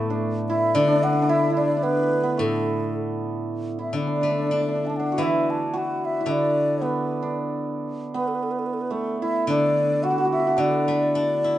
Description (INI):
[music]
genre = chinese traditional, Chinese chamber ensemble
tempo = 110 BPM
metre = 4/4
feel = rubato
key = D gong mode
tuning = A4 = 441 Hz
[part]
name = mellow hollow xiao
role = melody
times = 0.0-11.6 s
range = A4 to A5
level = -24 LUFS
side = left 1 dB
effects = none
[part]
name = hammered dulcimer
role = second line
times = 0.0-11.6 s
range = A3 to F#4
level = -25 LUFS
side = right 3 dB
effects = none
[part]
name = steel-string zither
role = accompaniment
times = 0.0-11.6 s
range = A2 to E4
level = -27 LUFS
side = left 2 dB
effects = none
[sound]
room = moderate studio reverb, RT60 0.5 s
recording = nothing above 10.3 kHz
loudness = -21 LUFS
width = side -13 dB against mid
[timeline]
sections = 0.0-11.6 A section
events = none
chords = none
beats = 0.22 0.76 1.30 | 1.84 2.39 2.95 3.51 | 4.08 4.64 5.20 5.74 | 6.28 6.82 7.36 7.89 | 8.43 8.96 9.51 10.05 | 10.60 11.14